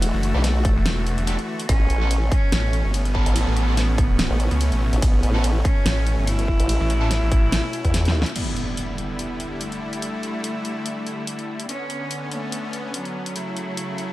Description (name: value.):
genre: heavy wobble dubstep.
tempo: 144 BPM.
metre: 4/4.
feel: swing 55% on 16ths, half-time.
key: E dorian.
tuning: A4 = 440 Hz.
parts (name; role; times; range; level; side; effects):
rich cello; melody; 0.0-14.1 s; F#3 to E4; -28 LUFS; equal; dub echo.
supersaw chords; sustained chords; 0.0-14.1 s; B2 to F#4; -31 LUFS; equal; sidechain pumping.
formant-sweep wobble bass; bass; 0.0-8.2 s; E1 to E2; -20 LUFS; equal; chorus, overdrive.
big-room dance drum kit; drums; 0.0-14.1 s; crash cymbal, hi-hat, ride cymbal, snare drum; -28 LUFS; equal; none.
snarling distorted saw bass; bass; 0.1-7.6 s; E1 to C#2; -22 LUFS; equal; distortion, overdrive.
fuzz guitar; stabs; 0.3-7.1 s; B3 to A4; -32 LUFS; right 1 dB; distortion.
electronic kick drum; drums; 0.6-7.9 s; none; -20 LUFS; equal; none.
impact; sound effects; 8.4-10.0 s; none; -31 LUFS; equal; none.
room: little or no reverb.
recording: none.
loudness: -20 LUFS.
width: side -16 dB against mid.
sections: 0.0-8.4 A section; 8.4-14.1 B section.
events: drop 0.0-8.4; drum fill 7.9-8.4; band accent 8.2; impact 8.4-10.0.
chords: 0.0 E7(no3); 1.7 Aadd9; 8.4 Em7; 11.7 Bmadd9; 13.4 A/C#.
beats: | 0.02 0.44 0.86 1.27 | 1.69 2.11 2.52 2.94 | 3.36 3.77 4.19 4.61 | 5.02 5.44 5.86 6.27 | 6.69 7.11 7.52 7.94 | 8.36 8.77 9.19 9.61 | 10.02 10.44 10.86 11.27 | 11.69 12.11 12.52 12.94 | 13.36 13.77.